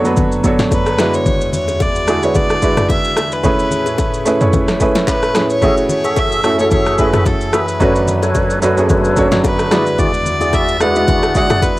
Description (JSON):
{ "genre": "amapiano", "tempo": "110 BPM", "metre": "4/4", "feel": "swing 55% on 16ths", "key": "unclear", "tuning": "A4 = 440 Hz", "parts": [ { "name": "warm concert grand piano", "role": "accompaniment", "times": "0.0-11.8 s", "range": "F#2 to C#5", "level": "-16 LUFS", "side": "right 1 dB", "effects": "cassette tape" }, { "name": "glassy FM pad", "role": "sustained chords", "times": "0.0-11.8 s", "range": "E2 to G#5", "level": "-24 LUFS", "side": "left 1 dB", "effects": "ensemble chorus, built-in reverb, cassette tape" }, { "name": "deep house drum kit", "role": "drums", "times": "0.0-11.8 s", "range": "handclaps, kick drum, rim click, shaker, snare drum, toms", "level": "-17 LUFS", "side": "equal", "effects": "overdrive" }, { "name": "bongos and congas", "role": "percussion", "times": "0.2-11.8 s", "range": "none", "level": "-22 LUFS", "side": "left 4 dB", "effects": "none" }, { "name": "rich fiddle", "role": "melody", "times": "0.7-11.8 s", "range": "A4 to F#5", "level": "-20 LUFS", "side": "equal", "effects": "cassette tape" }, { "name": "tonewheel organ", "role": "stabs", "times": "5.6-11.6 s", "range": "F#3 to E5", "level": "-19 LUFS", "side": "left 1 dB", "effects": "slow rotary speaker, cassette tape, tape echo" } ], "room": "light reverb", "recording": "home recording on cassette", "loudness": "-12 LUFS", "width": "side -18 dB against mid", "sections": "0.0-11.8 A section", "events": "none", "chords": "0.0 Bm9/F#; 1.0 E9; 3.4 Amaj9; 5.6 F#m9; 7.8 Bm9/F#; 9.7 E9" }